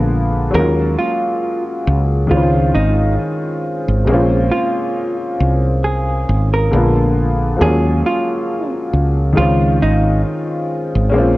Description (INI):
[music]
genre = lo-fi hip hop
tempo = 68 BPM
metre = 4/4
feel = swing 56% on 16ths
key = Db major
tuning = A4 = 440 Hz
[part]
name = vintage hollow-body jazz guitar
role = melody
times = 0.0-10.2 s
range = Eb4 to Bb4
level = -21 LUFS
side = right 1 dB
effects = low-pass filter
[part]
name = warm upright piano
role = accompaniment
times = 0.0-11.4 s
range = C3 to F4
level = -18 LUFS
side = left 1 dB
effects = cassette tape, low-pass filter
[part]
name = woody fretless electric bass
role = bass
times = 0.0-11.4 s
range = Ab1 to Eb2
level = -15 LUFS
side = equal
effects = transformer saturation
[sound]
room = light reverb, small room ambience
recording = worn, warbling old tape, cassette tape, warbly pitch drift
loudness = -14 LUFS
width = side -18 dB against mid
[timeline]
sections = 0.0-11.4 A section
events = none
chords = 0.0 Bb7b9; 0.5 Ebm11; 2.3 Dbmaj7; 4.1 Bbm9; 6.7 Bb7b9; 7.6 Ebm11; 9.4 Dbmaj7